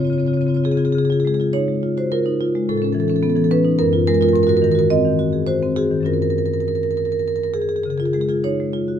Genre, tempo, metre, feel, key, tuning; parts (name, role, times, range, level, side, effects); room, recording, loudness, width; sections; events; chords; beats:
classical, contemporary piece for solo marimba; 96-109 BPM; 3/4; rubato; Db major; A4 = 440 Hz
marimba with soft mallets; solo; 0.0-9.0 s; Gb2 to Eb5; -16 LUFS; equal
moderate stone room reverb, RT60 1.0 s; -16 LUFS; side -9 dB against mid
1.0-9.0 A section
0.0 Dbmaj7; 1.0 Dbadd9; 2.7 Aadd9; 3.8 Gbmaj9; 4.3 Ab9; 6.1 Gbmaj7; 7.8 Dbadd9
0.34 | 0.96 1.55 2.12 | 2.68 3.24 3.79 | 4.34 4.90 5.48 | 6.06 6.66 7.25 | 7.85 8.44